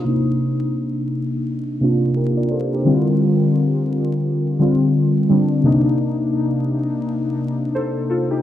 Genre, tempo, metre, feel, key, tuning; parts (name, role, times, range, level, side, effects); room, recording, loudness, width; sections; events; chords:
hip hop; 86 BPM; 4/4; swing 63% on 16ths; C dorian; A4 = 444 Hz
warbly lo-fi synth keys; accompaniment; 0.0-8.4 s; C3 to D5; -16 LUFS; left 1 dB; chorus, low-pass filter
moderate studio ambience, RT60 0.5 s; dark, warm production, vinyl crackle; -17 LUFS; side -12 dB against mid
0.1-8.4 A section
filter sweep on synth keys 0.1-8.4
0.1 Cm9; 2.8 G7sus4/D; 5.6 Cm9